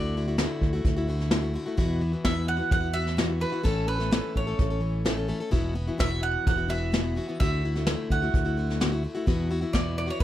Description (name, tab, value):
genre	folk rock and heartland rock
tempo	128 BPM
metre	4/4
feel	straight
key	unclear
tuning	A4 = 442 Hz
part	bowl-back mandolin	melody	0.0-10.2 s	A4 to F#5	-31 LUFS	right 3 dB	slapback echo
part	picked plugged-in steel-string acoustic guitar	accompaniment	0.0-10.2 s	E2 to A4	-31 LUFS	left 3 dB	none
part	fingered electric bass	bass	0.0-10.2 s	E1 to E2	-29 LUFS	equal	none
part	soft brush drum kit	drums	0.4-10.2 s	hi-hat, kick drum, snare drum	-27 LUFS	equal	none
room	little or no reverb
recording	none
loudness	-24 LUFS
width	side -13 dB against mid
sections	0.0-10.2 A section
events	none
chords	0.0 Dadd9; 1.8 Esus2; 3.7 A; 5.5 Esus2; 7.4 Dadd9; 9.3 Esus2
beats	0.38 0.84 1.31 | 1.78 2.25 2.72 3.19 | 3.66 4.12 4.59 5.06 | 5.53 6.00 6.46 6.93 | 7.40 7.87 8.34 8.80 | 9.27 9.74 10.20